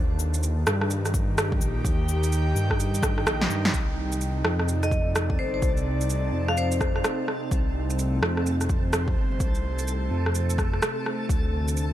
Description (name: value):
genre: future garage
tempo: 127 BPM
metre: 4/4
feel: swing 62% on 16ths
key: C dorian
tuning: A4 = 440 Hz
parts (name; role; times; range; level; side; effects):
- airy breathy pad; sustained chords; 0.0-11.9 s; C3 to G5; -31 LUFS; right 1 dB; chorus, sidechain pumping
- dark detuned saw bass; bass; 0.0-11.9 s; G1 to G2; -26 LUFS; equal; sidechain pumping
- electronic cabasa, shaker, rim click and snare drum; drums; 0.2-11.9 s; none; -29 LUFS; equal; overdrive
- electronic kick drum; drums; 1.1-11.4 s; none; -26 LUFS; equal; overdrive
- backwards swelling texture; texture; 4.8-11.9 s; A3 to A4; -37 LUFS; left 1 dB; built-in reverb
- vibraphone with hard mallets; melody; 4.8-7.2 s; C5 to F5; -32 LUFS; left 3 dB; digital delay
room: light reverb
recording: vinyl crackle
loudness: -22 LUFS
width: side -12 dB against mid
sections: 0.0-3.7 A section; 3.7-11.9 B section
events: drum fill 3.4-3.7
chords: 0.0 Eb; 3.7 Cm; 11.3 Dm